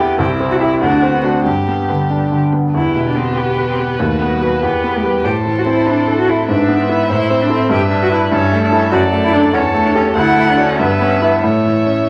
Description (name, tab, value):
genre	quick classical-period movement for piano quartet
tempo	96 BPM (dotted quarters)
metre	6/8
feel	straight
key	E minor, D major from 7.7 s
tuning	A4 = 439 Hz
part	dark violin	melody	0.0-12.1 s	E4 to F#5	-23 LUFS	equal	none
part	rich cello	second line	0.0-12.1 s	F#3 to G4	-21 LUFS	equal	none
part	warm violin	second line	0.0-12.1 s	F#4 to G5	-25 LUFS	equal	none
part	clear baby grand piano	accompaniment	0.0-12.1 s	C2 to E5	-17 LUFS	equal	none
room	wet large studio reverb, RT60 1.3 s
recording	vinyl crackle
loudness	-15 LUFS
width	mono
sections	0.0-2.7 A section; 2.7-12.1 B section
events	none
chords	0.2 C; 0.8 D7; 1.5 G; 2.7 Em; 4.0 B/D#; 4.6 Em; 5.2 Am; 6.5 E/G#; 7.1 Am; 7.7 Em7/G; 8.3 A7/G; 8.9 D/F#; 9.5 A7/E; 10.2 D; 10.8 Em/G; 11.4 A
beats	| 0.19 0.81 | 1.45 2.10 | 2.74 3.37 | 4.00 4.63 | 5.25 5.87 | 6.48 7.10 | 7.71 8.32 | 8.93 9.54 | 10.16 10.79 | 11.44 12.09